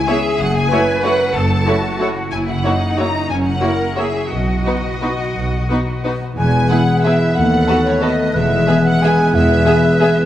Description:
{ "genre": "classical, orchestral ballroom waltz", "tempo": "163-204 BPM", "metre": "3/4", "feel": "rubato", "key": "E major", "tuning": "A4 = 441 Hz", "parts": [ { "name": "rich studio violin section", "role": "melody", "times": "0.0-10.2 s", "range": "C#5 to A#5", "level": "-23 LUFS", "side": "left 3 dB", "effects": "none" }, { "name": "concert harp", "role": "arpeggios", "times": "0.0-10.3 s", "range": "F#2 to E6", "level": "-21 LUFS", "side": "left 2 dB", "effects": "none" }, { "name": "rich studio cello section", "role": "bass", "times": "0.0-9.6 s", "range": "D#2 to B4", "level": "-22 LUFS", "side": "right 1 dB", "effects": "none" }, { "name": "rich studio violin section", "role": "second line", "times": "0.1-10.1 s", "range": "F#4 to E5", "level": "-25 LUFS", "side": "left 1 dB", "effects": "none" }, { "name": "rich studio viola section", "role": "accompaniment", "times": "0.1-10.1 s", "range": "A3 to G#4", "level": "-24 LUFS", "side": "right 1 dB", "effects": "none" }, { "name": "dark studio double bass section", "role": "bass", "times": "0.4-9.6 s", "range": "E1 to D#2", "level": "-21 LUFS", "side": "right 1 dB", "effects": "none" }, { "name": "mellow clarinet", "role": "second line", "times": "6.4-10.3 s", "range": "G#4 to A4", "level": "-21 LUFS", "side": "equal", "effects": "none" }, { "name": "mellow hollow silver concert flute", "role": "second line", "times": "6.4-10.2 s", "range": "C#5 to G#5", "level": "-21 LUFS", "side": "left 1 dB", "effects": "none" }, { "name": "warm oboe", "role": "second line", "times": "6.4-10.3 s", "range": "B4", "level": "-24 LUFS", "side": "right 3 dB", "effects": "none" }, { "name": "mellow French horn section", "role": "sustained chords", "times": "6.4-10.3 s", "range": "G#3 to B3", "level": "-21 LUFS", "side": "left 2 dB", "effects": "none" } ], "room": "moderate concert hall reverb, RT60 2.1 s", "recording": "vinyl crackle", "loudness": "-13 LUFS", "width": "side -12 dB against mid", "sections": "0.0-6.4 A section; 6.4-10.3 B section", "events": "none", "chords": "0.4 F#m7; 2.3 F#7; 4.3 B; 6.4 E; 7.4 B7/D#; 8.4 E", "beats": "0.08 | 0.39 0.71 1.04 | 1.35 1.66 1.99 | 2.31 2.63 2.97 | 3.29 3.62 3.97 | 4.31 4.66 5.02 | 5.35 5.70 6.05 | 6.38 6.71 7.05 | 7.37 7.69 8.03 | 8.36 8.69 9.03 | 9.35 9.67 10.01" }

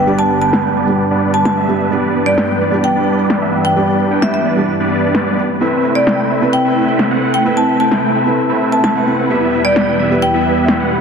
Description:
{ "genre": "EDM, festival progressive house", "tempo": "130 BPM", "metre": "4/4", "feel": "straight", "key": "G major", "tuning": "A4 = 438 Hz", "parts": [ { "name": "marimba with medium hard mallets", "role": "melody", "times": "0.0-10.3 s", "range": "D5 to A5", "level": "-18 LUFS", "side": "equal", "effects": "dub echo" }, { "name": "felt-muted upright piano", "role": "accompaniment", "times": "0.0-11.0 s", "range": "G3 to B4", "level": "-19 LUFS", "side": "right 2 dB", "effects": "none" }, { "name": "lush unison pad", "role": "sustained chords", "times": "0.0-11.0 s", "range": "E2 to B4", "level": "-21 LUFS", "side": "left 1 dB", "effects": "chorus" }, { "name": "supersaw chords", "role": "riff", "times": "0.0-11.0 s", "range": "G3 to G5", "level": "-17 LUFS", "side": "equal", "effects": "phaser, low-pass filter, dub echo" }, { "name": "electronic snare drum", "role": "drums", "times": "0.5-10.8 s", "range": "none", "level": "-20 LUFS", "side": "left 1 dB", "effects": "overdrive, low-pass filter on hats, low-pass filter on cymbals, low-pass filter on perc, low-pass filter on snare, low-pass filter on room" } ], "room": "moderate huge ambient reverb, RT60 3.8 s", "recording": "heavily compressed radio sound", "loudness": "-12 LUFS", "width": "side -6 dB against mid", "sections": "0.0-11.0 A section", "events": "filter sweep on analog synth pad 0.0-11.0", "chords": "0.0 G; 5.6 Amadd9; 9.3 Em", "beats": "| 0.07 0.53 0.99 1.46 | 1.92 2.38 2.84 3.30 | 3.76 4.22 4.69 5.15 | 5.61 6.07 6.53 6.99 | 7.46 7.92 8.38 8.84 | 9.30 9.76 10.22 10.69" }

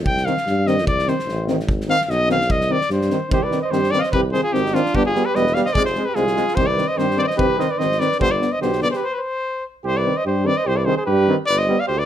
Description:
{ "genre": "balkan folk, Balkan brass band", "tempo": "147 BPM", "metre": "2/4", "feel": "swing 55% on 16ths", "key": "C harmonic minor", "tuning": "A4 = 439 Hz", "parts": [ { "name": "warm tuba", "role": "bass", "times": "0.0-12.1 s", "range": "E1 to G2", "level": "-23 LUFS", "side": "equal", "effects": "none" }, { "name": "clear trumpet", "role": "melody", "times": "0.1-12.1 s", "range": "F4 to G5", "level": "-21 LUFS", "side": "left 2 dB", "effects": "none" }, { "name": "loose indie drum kit", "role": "percussion", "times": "0.1-9.0 s", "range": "kick drum, snare drum", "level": "-27 LUFS", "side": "equal", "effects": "none" }, { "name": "brilliant trombone", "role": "accompaniment", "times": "0.3-11.8 s", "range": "D3 to Ab3", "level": "-26 LUFS", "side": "right 6 dB", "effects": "none" }, { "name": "mellow euphonium", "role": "accompaniment", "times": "0.3-11.8 s", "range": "B3 to C4", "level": "-25 LUFS", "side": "left 4 dB", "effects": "none" }, { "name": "mellow flugelhorn", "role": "second line", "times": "3.3-12.1 s", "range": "D4 to D5", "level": "-24 LUFS", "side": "right 6 dB", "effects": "none" } ], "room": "moderate studio reverb, RT60 0.6 s", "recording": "faint mains hum", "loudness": "-17 LUFS", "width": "side -10 dB against mid", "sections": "0.0-3.3 A section; 3.3-9.8 B section; 9.8-12.1 B section", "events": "trumpet solo 0.0-3.3; stop 9.0-9.8", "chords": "0.1 Cm; 1.7 Ab; 2.5 Cm; 4.9 G; 5.8 Fm; 6.6 Cm; 8.2 G; 9.0 N.C.; 9.8 Cm; 11.5 G", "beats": "| 0.06 0.46 | 0.87 1.28 | 1.68 2.09 | 2.50 2.90 | 3.31 3.72 | 4.13 4.53 | 4.94 5.35 | 5.76 6.17 | 6.58 6.98 | 7.39 7.80 | 8.21 8.62 | 9.03 9.44 | 9.85 10.26 | 10.66 11.07 | 11.48 11.89" }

